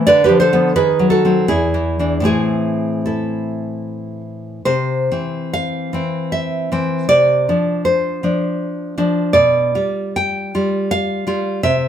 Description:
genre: romantic piece for solo classical guitar.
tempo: 65-91 BPM.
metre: 3/4.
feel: rubato.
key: A minor, C major from 4.7 s.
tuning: A4 = 440 Hz.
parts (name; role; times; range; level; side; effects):
nylon-string guitar; solo; 0.0-11.9 s; E2 to G5; -15 LUFS; equal; none.
room: moderate studio reverb, RT60 0.9 s.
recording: band playing live in one room.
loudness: -15 LUFS.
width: side -9 dB against mid.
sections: 0.0-4.7 A section; 4.7-11.9 B section.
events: none.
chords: 0.1 Bm7b5/D; 0.7 D#dim7; 1.5 E7; 2.2 Am; 4.7 C; 7.1 Dm7/C; 9.4 G7/B.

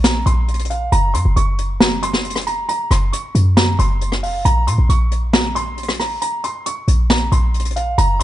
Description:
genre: hip hop, trap.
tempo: 136 BPM.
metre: 4/4.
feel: half-time.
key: Bb minor.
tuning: A4 = 440 Hz.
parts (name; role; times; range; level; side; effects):
dark concert grand piano; melody; 0.0-8.2 s; F5 to Db6; -22 LUFS; right 2 dB; low-pass filter.
short 808-style bass; bass; 0.0-8.2 s; F1 to Bb2; -16 LUFS; equal; none.
jazz brush drum kit; drums; 0.0-8.2 s; hi-hat, rim click, snare drum; -19 LUFS; left 1 dB; none.
room: light reverb.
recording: dark, warm production, nothing above 10.4 kHz.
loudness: -15 LUFS.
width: side -14 dB against mid.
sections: 0.0-8.2 A section.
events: none.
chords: 0.0 Bbsus2; 0.9 Gb5; 4.5 Bbmadd9.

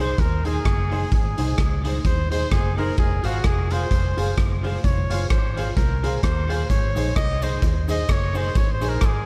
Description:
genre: ska.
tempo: 129 BPM.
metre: 4/4.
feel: swing 56% on 8ths.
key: Ab mixolydian.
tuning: A4 = 440 Hz.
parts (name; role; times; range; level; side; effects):
bright trumpet; melody; 0.0-9.3 s; Gb4 to Eb5; -31 LUFS; equal; dub echo.
clean electric guitar; accompaniment; 0.0-8.9 s; Eb4 to C5; -35 LUFS; equal; lush chorus, dub echo.
bright upright piano; stabs; 0.0-9.0 s; Eb4 to C5; -35 LUFS; equal; none.
vintage muted fingered electric bass; bass; 0.0-9.3 s; F1 to Eb2; -26 LUFS; equal; none.
raw garage drum kit; drums; 0.2-9.1 s; hi-hat, kick drum, rim click; -25 LUFS; equal; none.
cabasa; percussion; 6.7-9.1 s; none; -53 LUFS; equal; none.
room: little or no reverb.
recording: dark, warm production.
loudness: -22 LUFS.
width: mono.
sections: 0.0-9.3 A section.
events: trumpet solo 0.0-9.3.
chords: 0.0 Ab; 3.0 Fm; 6.7 Ab.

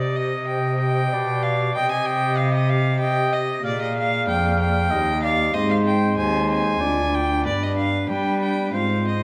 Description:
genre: classical, baroque-style sonata movement with continuo.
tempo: 94 BPM.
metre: 3/4.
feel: rubato.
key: C minor.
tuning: A4 = 439 Hz.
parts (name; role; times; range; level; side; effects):
rich violin; melody; 0.0-9.2 s; D5 to Ab5; -27 LUFS; equal; none.
clear oboe; second line; 0.0-9.2 s; B4 to F5; -30 LUFS; equal; none.
pipe organ, stopped flute; accompaniment; 0.0-9.2 s; D2 to Eb5; -28 LUFS; equal; none.
rich cello; bass; 0.0-9.2 s; D2 to G3; -26 LUFS; equal; none.
room: wet recital hall reverb, RT60 1.2 s.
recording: none.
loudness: -21 LUFS.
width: mono.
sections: 0.0-9.2 A section.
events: none.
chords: 0.0 Cm; 1.1 G/B; 1.8 Cm; 3.7 Bb7; 4.9 Eb; 5.5 Ab; 6.8 Ddim; 7.5 G.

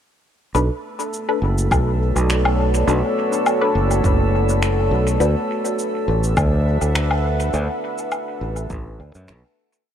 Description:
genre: ambient dub.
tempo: 103 BPM.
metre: 4/4.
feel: swing 53% on 16ths.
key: B minor.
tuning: A4 = 440 Hz.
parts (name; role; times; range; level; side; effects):
deep dark ambient pad; sustained chords; 1.8-9.9 s; B3 to F#5; -23 LUFS; equal; chorus, built-in reverb.
filtered dub chord stab; stabs; 0.5-5.4 s; D4 to B4; -26 LUFS; left 2 dB; phaser, dub echo.
fingered electric bass; bass; 0.5-9.4 s; F#1 to F#2; -19 LUFS; equal; tube saturation.
drifting glass-harmonics texture; texture; 0.9-9.9 s; A3 to A4; -28 LUFS; equal; chorus, built-in reverb.
electronic cabasa, woodblock and finger snaps; drums; 0.6-9.8 s; none; -26 LUFS; left 2 dB; dub echo.
electronic kick drum; drums; 1.7-8.8 s; none; -22 LUFS; equal; none.
room: light reverb, digital ambience.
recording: none.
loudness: -17 LUFS.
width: side -9 dB against mid.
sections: 0.5-9.9 groove.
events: fade-out 6.8-9.9.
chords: 0.5 Bm7; 5.2 D6.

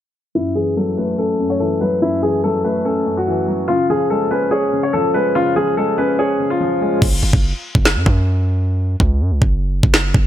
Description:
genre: hip hop, drill.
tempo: 144 BPM.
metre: 4/4.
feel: half-time.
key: F# minor.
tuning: A4 = 441 Hz.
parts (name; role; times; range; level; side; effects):
warm upright piano; melody; 0.4-7.0 s; E4 to C#5; -18 LUFS; left 1 dB; low-pass filter, ping-pong delay.
dark concert grand piano; accompaniment; 0.4-7.0 s; F#2 to C#5; -19 LUFS; left 1 dB; low-pass filter.
hard-hitting 808-style bass; bass; 7.0-10.3 s; F#1 to F#2; -16 LUFS; equal; none.
drill drum kit; drums; 7.0-10.2 s; crash cymbal, kick drum, snare drum; -15 LUFS; equal; overdrive.
room: small room ambience.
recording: none.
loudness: -15 LUFS.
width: side -11 dB against mid.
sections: 0.4-7.0 A section; 7.0-10.3 B section.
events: filter sweep 0.4-7.0; hi-hats muted 7.0-10.3.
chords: 0.4 F#m7; 3.7 C#; 7.0 F#5.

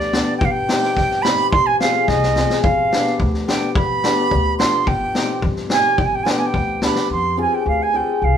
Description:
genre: klezmer.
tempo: 108 BPM.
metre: 2/4.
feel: straight.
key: unclear.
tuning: A4 = 439 Hz.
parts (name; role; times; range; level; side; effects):
bright silver concert flute; melody; 0.0-8.4 s; D5 to C6; -19 LUFS; right 3 dB; none.
upright bass; bass; 0.0-8.4 s; G1 to G2; -24 LUFS; equal; none.
street-band drum kit; drums; 0.0-7.1 s; kick drum, snare drum; -22 LUFS; left 2 dB; none.
hammered dulcimer; accompaniment; 0.1-8.1 s; B3 to Ab4; -22 LUFS; left 3 dB; none.
room: moderate studio reverb, RT60 0.5 s.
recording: band playing live in one room.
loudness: -15 LUFS.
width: side -8 dB against mid.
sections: 0.0-7.1 A section; 7.1-8.4 B section.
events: drum fill 2.1-2.6.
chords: 0.4 Cm/G; 1.5 Fm/G; 2.6 G; 4.9 Cm/G; 6.0 G; 7.1 Fm.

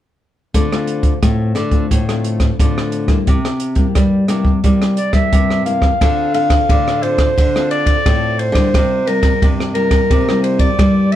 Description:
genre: samba and choro.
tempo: 88 BPM.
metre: 4/4.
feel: straight.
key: D minor.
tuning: A4 = 439 Hz.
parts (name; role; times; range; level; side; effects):
nylon-string guitar; accompaniment; 0.5-11.2 s; G2 to A4; -20 LUFS; left 3 dB; none.
nylon-string guitar; bass; 0.5-11.2 s; A2 to G3; -19 LUFS; equal; none.
compact cocktail drum kit; drums; 0.5-11.2 s; hi-hat, kick drum, ride cymbal, rim click; -16 LUFS; equal; none.
warm clarinet; melody; 5.0-11.2 s; Bb4 to F5; -17 LUFS; right 1 dB; none.
room: moderate studio ambience, RT60 0.5 s.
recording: heard from further back in the room.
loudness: -12 LUFS.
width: side -12 dB against mid.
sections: 0.5-6.0 A section; 6.0-11.2 B section.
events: none.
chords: 0.5 Dm7; 3.3 C7; 6.0 Dm7; 8.7 C7.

